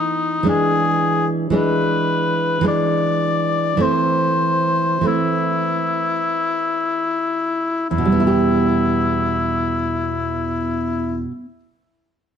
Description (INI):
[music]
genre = romantic duo for oboe and classical guitar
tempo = 38-57 BPM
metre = 3/4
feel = rubato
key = E minor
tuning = A4 = 440 Hz
[part]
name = clear oboe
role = melody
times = 0.0-11.2 s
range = D#4 to D5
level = -20 LUFS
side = left 4 dB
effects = plate reverb
[part]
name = nylon-string guitar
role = accompaniment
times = 0.0-11.6 s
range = E2 to G4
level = -20 LUFS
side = right 2 dB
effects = none
[sound]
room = moderate studio reverb, RT60 0.9 s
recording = dark, warm production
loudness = -17 LUFS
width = side -8 dB against mid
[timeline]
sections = 0.0-7.9 A section; 7.9-12.2 B section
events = slowing down 0.0-7.9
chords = 0.5 E7; 3.8 Am/E; 7.9 Em